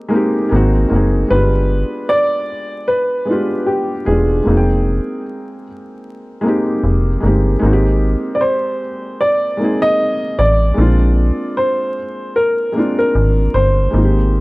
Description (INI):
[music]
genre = lo-fi hip hop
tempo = 76 BPM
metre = 4/4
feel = swing 58% on 16ths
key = unclear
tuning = A4 = 440 Hz
[part]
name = felt-muted upright piano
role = accompaniment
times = 0.0-14.4 s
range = Ab3 to G5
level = -18 LUFS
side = equal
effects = cassette tape, low-pass filter
[part]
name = metallic FM bass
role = bass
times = 0.5-14.4 s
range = E1 to Bb1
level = -14 LUFS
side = equal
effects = transformer saturation
[part]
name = dark upright piano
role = melody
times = 1.3-14.4 s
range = G4 to Eb5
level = -17 LUFS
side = equal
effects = low-pass filter
[sound]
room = light reverb, small room ambience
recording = worn, warbling old tape, cassette tape, vinyl crackle, warbly pitch drift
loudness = -13 LUFS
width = side -22 dB against mid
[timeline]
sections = 0.0-7.6 A section; 7.6-14.4 B section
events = none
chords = 0.0 Fm11 (rootless); 0.5 Ab9; 1.3 G7b9; 4.5 Fm11; 7.6 Abmaj9; 10.8 Bb7